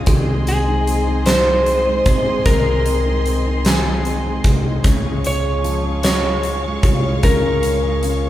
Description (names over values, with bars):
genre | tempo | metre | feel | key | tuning
six-eight pop ballad | 50 BPM (dotted quarters) | 6/8 | straight | Db major | A4 = 440 Hz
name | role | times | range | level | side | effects
warm grand piano | accompaniment | 0.0-8.3 s | C3 to F4 | -27 LUFS | left 5 dB | none
clear studio string section | sustained chords | 0.0-8.3 s | Ab4 to Db6 | -27 LUFS | left 1 dB | none
fingerpicked steel-string acoustic guitar | arpeggios | 0.0-8.3 s | Eb3 to Ab4 | -26 LUFS | right 3 dB | none
upright bass | bass | 0.0-8.3 s | Bb1 to Db2 | -21 LUFS | equal | none
huge arena drum kit | drums | 0.1-8.2 s | hi-hat, kick drum, snare drum | -19 LUFS | equal | none
electric slide guitar | melody | 0.5-8.3 s | Ab4 to Db5 | -20 LUFS | equal | none
room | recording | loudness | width
moderate large studio reverb, RT60 0.8 s | band playing live in one room | -15 LUFS | side -13 dB against mid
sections
0.0-8.3 A section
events
none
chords
0.1 Ab; 4.8 Db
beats
| 0.07 1.26 | 2.46 3.65 | 4.85 6.04 | 7.24